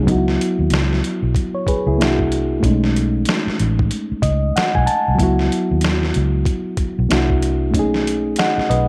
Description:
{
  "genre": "R&B, neo-soul",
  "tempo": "94 BPM",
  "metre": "4/4",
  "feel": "swing 60% on 16ths",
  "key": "C# minor",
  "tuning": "A4 = 440 Hz",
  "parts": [
    { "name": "reed electric piano", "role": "accompaniment", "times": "0.0-8.9 s", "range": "F#3 to A5", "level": "-21 LUFS", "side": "equal", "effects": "none" },
    { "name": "vintage muted fingered electric bass", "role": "bass", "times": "0.0-8.9 s", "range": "A1 to D#2", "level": "-22 LUFS", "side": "equal", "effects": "none" },
    { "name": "boom bap sampler-style drum kit", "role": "drums", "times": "0.1-8.9 s", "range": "hi-hat, kick drum, snare drum", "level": "-24 LUFS", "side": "equal", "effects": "none" }
  ],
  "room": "light reverb, digital ambience",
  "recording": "none",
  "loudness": "-18 LUFS",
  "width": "mono",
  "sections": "0.0-8.9 A section",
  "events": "reed electric piano fill 3.9-5.2",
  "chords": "0.1 C#m11; 2.0 C9; 2.6 B9; 5.2 C#m11; 7.1 C9; 7.7 B9",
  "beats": "| 0.08 0.72 1.35 1.99 | 2.63 3.27 3.91 4.55 | 5.18 5.82 6.46 7.10 | 7.74 8.38"
}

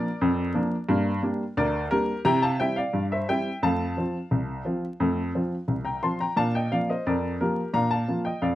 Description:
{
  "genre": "ragtime piano",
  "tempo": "88 BPM",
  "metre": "2/4",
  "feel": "straight",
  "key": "Bb major",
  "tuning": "A4 = 442 Hz",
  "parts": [
    { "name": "warm upright piano", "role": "solo", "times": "0.0-8.6 s", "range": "C2 to C6", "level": "-23 LUFS", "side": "equal", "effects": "none" }
  ],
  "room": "light reverb",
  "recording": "dry, close 1970s-style studio recording, vinyl crackle",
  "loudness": "-23 LUFS",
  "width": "side -14 dB against mid",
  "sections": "0.0-8.6 A section",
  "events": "none",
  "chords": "0.0 Bb; 0.9 Gm; 2.3 C; 3.6 F; 6.4 Bb",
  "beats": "0.23 | 0.90 1.58 | 2.26 2.94 | 3.63 4.31 | 5.00 5.69 | 6.37 7.06 | 7.74 8.42"
}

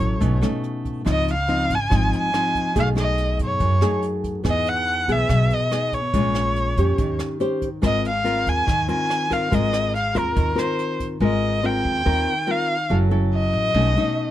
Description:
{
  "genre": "bossa nova",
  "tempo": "142 BPM",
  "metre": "4/4",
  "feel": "straight",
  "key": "Ab major",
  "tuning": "A4 = 441 Hz",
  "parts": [
    { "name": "rich erhu", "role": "melody", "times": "0.0-14.3 s", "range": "Bb4 to Ab5", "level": "-23 LUFS", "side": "equal", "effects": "none" },
    { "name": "nylon-string guitar", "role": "accompaniment", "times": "0.0-14.3 s", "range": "F#2 to C5", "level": "-24 LUFS", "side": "left 2 dB", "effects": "none" },
    { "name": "upright bass", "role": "bass", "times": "0.0-13.9 s", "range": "Gb1 to F#2", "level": "-23 LUFS", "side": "equal", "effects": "none" },
    { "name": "jazz brush drum kit", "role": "drums", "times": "0.0-11.1 s", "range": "hi-hat, kick drum, rim click", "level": "-29 LUFS", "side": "right 1 dB", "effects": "none" }
  ],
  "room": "little or no reverb",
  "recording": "close, detailed microphones",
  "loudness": "-19 LUFS",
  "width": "side -12 dB against mid",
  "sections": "0.0-11.2 A section; 11.2-14.3 A section",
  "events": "none",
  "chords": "0.2 B9; 1.1 Dbmaj9; 2.8 B13; 4.4 Emaj7; 6.1 Bbm7; 7.0 Eb6; 7.8 Ab69; 12.9 Gbm7; 13.7 B9",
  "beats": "0.21 0.64 | 1.06 1.48 1.91 2.33 | 2.75 3.18 3.60 4.02 | 4.45 4.87 5.29 5.71 | 6.14 6.56 6.98 7.41 | 7.83 8.25 8.67 9.10 | 9.52 9.94 10.37 10.79 | 11.21 11.63 12.05 12.48 | 12.90 13.32 13.74 14.17"
}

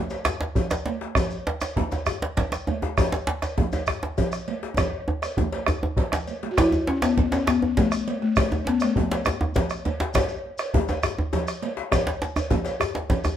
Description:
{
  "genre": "west african traditional, West African drum ensemble",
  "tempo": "134 BPM (dotted quarters)",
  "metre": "12/8",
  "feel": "straight",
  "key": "A major pentatonic",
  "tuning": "A4 = 438 Hz",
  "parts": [
    { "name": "cowbell", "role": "percussion", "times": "0.1-13.2 s", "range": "none", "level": "-33 LUFS", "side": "right 1 dB", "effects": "none" },
    { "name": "djembe", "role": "percussion", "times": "0.1-13.4 s", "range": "none", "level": "-31 LUFS", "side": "left 7 dB", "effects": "none" },
    { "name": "shekere", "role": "percussion", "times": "0.1-13.4 s", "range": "none", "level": "-37 LUFS", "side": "left 2 dB", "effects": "none" },
    { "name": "bombo", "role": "percussion", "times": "0.2-13.4 s", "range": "none", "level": "-25 LUFS", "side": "right 1 dB", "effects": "none" },
    { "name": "djembe", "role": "percussion", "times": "0.3-13.4 s", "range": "none", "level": "-27 LUFS", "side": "right 1 dB", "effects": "none" },
    { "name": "congas", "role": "percussion", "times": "0.6-13.3 s", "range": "none", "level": "-32 LUFS", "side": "right 6 dB", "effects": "none" },
    { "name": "balafon", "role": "melody", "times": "6.5-9.7 s", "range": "A3 to F#4", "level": "-23 LUFS", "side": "left 4 dB", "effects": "none" }
  ],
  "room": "moderate large studio reverb, RT60 0.9 s",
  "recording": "band playing live in one room",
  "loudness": "-22 LUFS",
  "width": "side -10 dB against mid",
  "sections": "0.0-6.6 A section; 6.6-13.4 B section",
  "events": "speeding up 0.0-13.4; drum fill 4.8-6.6, 13.0-13.4",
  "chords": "none",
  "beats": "0.25 0.71 | 1.16 1.62 2.07 2.52 | 2.98 3.43 3.88 4.33 | 4.78 5.23 5.68 6.13 | 6.58 7.02 7.47 7.92 | 8.37 8.81 9.26 9.70 | 10.15 10.59 11.04 11.48 | 11.92 12.36 12.80 13.25"
}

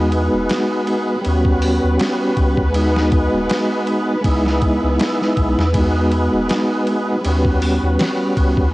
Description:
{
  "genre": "trip hop",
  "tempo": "80 BPM",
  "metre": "4/4",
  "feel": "swing 55% on 16ths",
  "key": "unclear",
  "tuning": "A4 = 440 Hz",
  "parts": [
    { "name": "tonewheel organ", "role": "accompaniment", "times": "0.0-8.7 s", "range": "G3 to F#4", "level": "-18 LUFS", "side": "equal", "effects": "chorus vibrato, stopped rotary speaker, harmonic tremolo, cassette tape, tape echo" },
    { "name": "warm studio violin section", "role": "sustained chords", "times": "0.0-8.7 s", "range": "B3 to B4", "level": "-25 LUFS", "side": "equal", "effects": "cassette tape" },
    { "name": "soft dub sub bass", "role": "bass", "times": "0.0-8.7 s", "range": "D#1 to E2", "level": "-19 LUFS", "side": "equal", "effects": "tube saturation" },
    { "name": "backwards swelling texture", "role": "texture", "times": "0.2-8.7 s", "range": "D#4", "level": "-33 LUFS", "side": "left 2 dB", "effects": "none" },
    { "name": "boom bap sampler-style drum kit", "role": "drums", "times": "0.1-8.7 s", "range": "hi-hat, kick drum, ride cymbal, snare drum", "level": "-22 LUFS", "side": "equal", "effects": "cassette tape" }
  ],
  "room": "light reverb",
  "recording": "home recording on cassette",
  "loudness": "-15 LUFS",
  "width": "side -19 dB against mid",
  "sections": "0.0-8.7 A section",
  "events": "none",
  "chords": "0.0 Emaj9; 1.2 D#7alt; 2.7 G#m7/D#; 4.2 C#m9; 5.7 Emaj9; 7.2 D#7alt",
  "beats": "0.50 | 1.25 2.00 2.75 3.50 | 4.25 5.00 5.75 6.50 | 7.25 8.00"
}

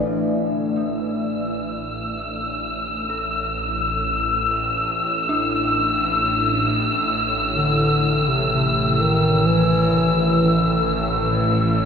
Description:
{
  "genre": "dark ambient drone",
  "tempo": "free time",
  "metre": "none",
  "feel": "none",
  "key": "unclear",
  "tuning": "A4 = 445 Hz",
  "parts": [
    { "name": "dark detuned synth bell", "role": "arpeggios", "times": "0.0-11.9 s", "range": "D4 to A4", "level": "-31 LUFS", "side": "right 1 dB", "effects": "chorus, tape echo" },
    { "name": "bowed-like drone", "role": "drone", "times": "0.0-11.9 s", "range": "A1 to A2", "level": "-24 LUFS", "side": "equal", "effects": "built-in reverb, phaser" },
    { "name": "wind-like tuned noise texture", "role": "texture", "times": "1.2-11.9 s", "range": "E6", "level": "-22 LUFS", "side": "left 1 dB", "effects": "built-in reverb" },
    { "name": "mellow bass clarinet", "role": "melody", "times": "7.6-11.9 s", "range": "C3 to E3", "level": "-21 LUFS", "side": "equal", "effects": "tape echo" }
  ],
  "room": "wet huge ambient reverb, RT60 8.0 s",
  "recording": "none",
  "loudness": "-18 LUFS",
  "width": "side -7 dB against mid",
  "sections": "0.1-11.9 A section",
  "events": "fade-in on synth drone 0.1-11.9; fade-in on synth bell 0.1-11.9",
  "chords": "0.1 A5",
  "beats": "free time"
}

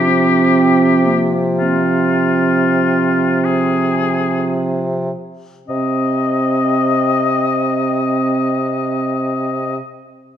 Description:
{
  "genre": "classical, slow romantic movement for wind quintet",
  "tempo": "free time",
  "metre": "none",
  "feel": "none",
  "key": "C minor",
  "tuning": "A4 = 442 Hz",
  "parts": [
    { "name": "clear oboe", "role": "second line", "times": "0.0-9.8 s", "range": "F4 to Eb5", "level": "-19 LUFS", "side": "left 7 dB", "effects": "none" },
    { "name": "dark French horn", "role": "accompaniment", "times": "0.0-9.8 s", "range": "F3 to C4", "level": "-22 LUFS", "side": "left 3 dB", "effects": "none" },
    { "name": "mellow clarinet", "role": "accompaniment", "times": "0.0-9.8 s", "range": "Bb3 to C4", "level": "-18 LUFS", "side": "right 4 dB", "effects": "none" },
    { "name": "mellow bassoon", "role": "bass", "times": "0.0-9.8 s", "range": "C3", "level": "-21 LUFS", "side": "right 2 dB", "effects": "none" }
  ],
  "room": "wet recital hall reverb, RT60 1.6 s",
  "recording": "none",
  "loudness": "-14 LUFS",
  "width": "side -9 dB against mid",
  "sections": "0.0-5.7 A section; 5.7-10.4 B section",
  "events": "slowing down 0.0-5.7",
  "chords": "0.0 F5/C; 5.7 Cm",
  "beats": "free time"
}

